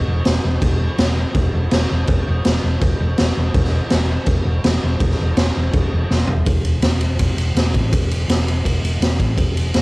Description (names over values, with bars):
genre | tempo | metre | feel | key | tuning
garage rock duo or trio | 165 BPM | 4/4 | straight | unclear | A4 = 440 Hz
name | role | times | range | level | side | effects
hollow-body short-scale fingered electric bass | bass | 0.1-9.8 s | E1 to A1 | -18 LUFS | equal | overdrive
raw garage drum kit | drums | 0.3-9.8 s | crash cymbal, kick drum, ride cymbal, snare drum, toms | -18 LUFS | equal | cassette tape
room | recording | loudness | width
little or no reverb | home recording on cassette | -15 LUFS | side -24 dB against mid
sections
0.0-6.5 A section; 6.5-9.8 B section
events
drum fill 6.1-6.5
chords
none